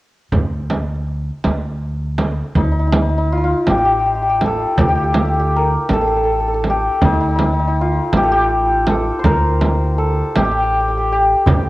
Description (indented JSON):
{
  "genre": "Persian modal ensemble",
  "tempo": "54 BPM (dotted quarters)",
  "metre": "6/8",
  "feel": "straight",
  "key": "D dastgah shur",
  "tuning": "A4 = 440 Hz",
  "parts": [
    { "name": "upright bass", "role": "bass", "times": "0.3-11.7 s", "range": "A1 to D2", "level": "-20 LUFS", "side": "equal", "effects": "none" },
    { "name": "frame drum", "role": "percussion", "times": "0.3-11.6 s", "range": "none", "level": "-18 LUFS", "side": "right 2 dB", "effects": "none" },
    { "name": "tombak", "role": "percussion", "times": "0.3-2.4, 11.5-11.6 s", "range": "none", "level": "-24 LUFS", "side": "right 1 dB", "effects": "none" },
    { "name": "santur", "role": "melody", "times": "2.6-11.7 s", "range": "Eb4+45c to C5", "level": "-16 LUFS", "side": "left 1 dB", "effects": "cassette tape" }
  ],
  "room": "wet spring reverb, RT60 2.0 s, small room ambience",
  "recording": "home recording on cassette",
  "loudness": "-14 LUFS",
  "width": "side -17 dB against mid",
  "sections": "0.3-2.6 A section; 2.6-11.7 B section",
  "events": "none",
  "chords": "none"
}